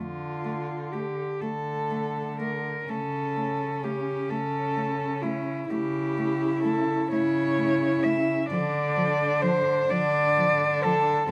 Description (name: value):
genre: classical, lyrical piece for cello ensemble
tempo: 43 BPM (dotted quarters)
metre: 6/8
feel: uneven beats, rubato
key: unclear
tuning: A4 = 442 Hz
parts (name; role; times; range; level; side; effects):
- warm cello; melody; 0.0-11.3 s; E4 to E5; -29 LUFS; equal; none
- warm cello; accompaniment; 0.0-11.3 s; F3 to A3; -35 LUFS; equal; none
- dark cello; bass; 0.0-11.3 s; C#3 to D3; -34 LUFS; equal; none
- warm cello; second line; 1.4-11.3 s; A3 to E4; -32 LUFS; equal; none
room: moderate studio ambience, RT60 0.5 s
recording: none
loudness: -26 LUFS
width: mono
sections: 0.0-11.3 A section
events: none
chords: 0.0 Dm; 2.9 A/C#; 8.5 Dm